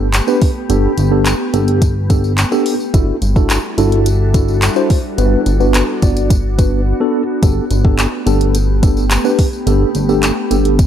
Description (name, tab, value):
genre	dance-pop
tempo	107 BPM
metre	4/4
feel	straight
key	G major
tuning	A4 = 441 Hz
part	mellow tine electric piano	accompaniment	0.0-10.8 s	B3 to D5	-17 LUFS	right 1 dB	medium stereo tremolo, sidechain pumping
part	glassy FM pad	sustained chords	0.0-10.9 s	G3 to A4	-22 LUFS	left 2 dB	ensemble chorus, built-in reverb, sidechain pumping
part	chorused synth bass	bass	0.0-10.9 s	G1	-15 LUFS	equal	sidechain pumping
part	smooth R&B drum kit	drums	0.1-10.9 s	handclaps, hi-hat, kick drum	-15 LUFS	equal	none
part	tambourine	percussion	0.1-10.9 s	none	-30 LUFS	left 4 dB	none
room	light reverb, digital ambience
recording	dry, gritty hardware recording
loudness	-12 LUFS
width	side -10 dB against mid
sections	0.0-10.9 A section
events	silent gap 6.9-7.4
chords	0.0 Gadd9; 2.9 Dadd9/G; 5.2 Bm/G; 7.4 Gadd9